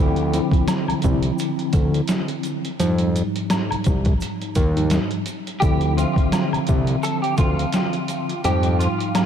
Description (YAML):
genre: hip hop, boom-bap hip-hop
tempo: 85 BPM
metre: 4/4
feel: swing 57% on 16ths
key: D minor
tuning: A4 = 440 Hz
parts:
  - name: mellow tine electric piano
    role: accompaniment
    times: 0.0-9.3 s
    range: Ab2 to E5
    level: -24 LUFS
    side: equal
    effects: medium stereo tremolo, high-pass filter, low-pass filter
  - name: fat analog bass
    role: bass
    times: 0.0-8.9 s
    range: C2 to F2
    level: -20 LUFS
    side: equal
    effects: none
  - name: trip hop sampler-style drum kit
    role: drums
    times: 0.2-9.3 s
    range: hi-hat, kick drum, snare drum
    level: -23 LUFS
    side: equal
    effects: overdrive
  - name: tube shaker and woodblock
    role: percussion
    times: 0.3-9.3 s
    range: none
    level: -34 LUFS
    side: left 1 dB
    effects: none
  - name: clean electric guitar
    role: melody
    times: 5.6-9.3 s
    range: F4 to A4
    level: -26 LUFS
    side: equal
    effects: ensemble chorus, high-pass filter, low-pass filter, ping-pong delay
room: moderate huge ambient reverb, RT60 7.9 s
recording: dreamy mix soaked in reverb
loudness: -18 LUFS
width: side -8 dB against mid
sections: 0.0-9.3 A section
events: none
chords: 0.0 Dm9; 2.8 Fm9; 5.6 Dm9; 8.4 Fm9